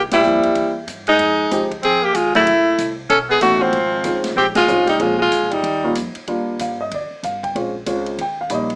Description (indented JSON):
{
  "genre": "jazz, small-group swing and bop",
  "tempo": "189 BPM",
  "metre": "4/4",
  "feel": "swing 62% on 8ths",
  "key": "unclear",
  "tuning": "A4 = 445 Hz",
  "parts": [
    { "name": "clear tenor saxophone", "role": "melody", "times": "0.0-6.0 s", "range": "C4 to A4", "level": "-16 LUFS", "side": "equal", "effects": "plate reverb" },
    { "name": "upright bass", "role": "bass", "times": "0.0-8.8 s", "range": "G1 to G2", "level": "-33 LUFS", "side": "equal", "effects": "none" },
    { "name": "breathy alto saxophone", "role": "second line", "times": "0.1-6.0 s", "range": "F3 to C#4", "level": "-20 LUFS", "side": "equal", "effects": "none" },
    { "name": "swinging big-band drum kit", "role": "drums", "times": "0.1-8.8 s", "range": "hi-hat, kick drum, ride cymbal, snare drum", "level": "-31 LUFS", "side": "equal", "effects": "none" },
    { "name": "dark baby grand piano", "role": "accompaniment", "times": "0.2-8.8 s", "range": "F3 to G5", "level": "-21 LUFS", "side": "equal", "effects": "none" }
  ],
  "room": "moderate club reverb, RT60 0.6 s",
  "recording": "small speaker sound",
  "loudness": "-15 LUFS",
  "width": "side -30 dB against mid",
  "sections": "0.0-6.3 A section; 6.3-8.8 B section",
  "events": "band accent 0.1, 4.5",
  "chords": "0.0 C7; 1.2 Fm7; 2.5 C6; 3.1 B9; 3.7 Dbmaj7; 5.0 Bbm7; 5.6 Eb7; 6.3 Ebmaj9; 7.5 Bbm7; 8.2 Eb7"
}